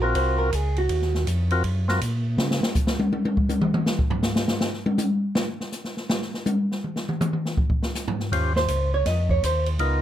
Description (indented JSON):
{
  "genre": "soul jazz organ trio",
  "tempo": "162 BPM",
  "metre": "4/4",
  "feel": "swing 64% on 8ths",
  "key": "Ab mixolydian",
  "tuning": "A4 = 440 Hz",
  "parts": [
    { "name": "percussive tonewheel organ", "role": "melody", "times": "0.0-2.0, 8.3-10.0 s", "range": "Cb4 to C5", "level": "-25 LUFS", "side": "left 2 dB", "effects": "slow rotary speaker" },
    { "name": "vintage hollow-body jazz guitar", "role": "accompaniment", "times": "0.0-1.2, 8.6-9.7 s", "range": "Gb4 to Eb5", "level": "-25 LUFS", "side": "right 3 dB", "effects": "none" },
    { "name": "mellow tonewheel organ", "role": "bass", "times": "0.0-2.6, 8.3-10.0 s", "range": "Bb1 to Db3", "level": "-23 LUFS", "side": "equal", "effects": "overdrive, chorus vibrato, slow rotary speaker" },
    { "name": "open jazz drum kit", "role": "drums", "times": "0.1-9.9 s", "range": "hi-hat, kick drum, ride cymbal, snare drum, toms", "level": "-24 LUFS", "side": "equal", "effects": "none" }
  ],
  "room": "light reverb",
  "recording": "close, detailed microphones",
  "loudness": "-21 LUFS",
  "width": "side -11 dB against mid",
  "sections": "0.0-10.0 A section",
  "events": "hollow-body jazz guitar solo 0.0-10.0; drum solo 2.4-8.3",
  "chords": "0.0 Ab13 (rootless); 2.4 N.C.; 8.3 Eb13"
}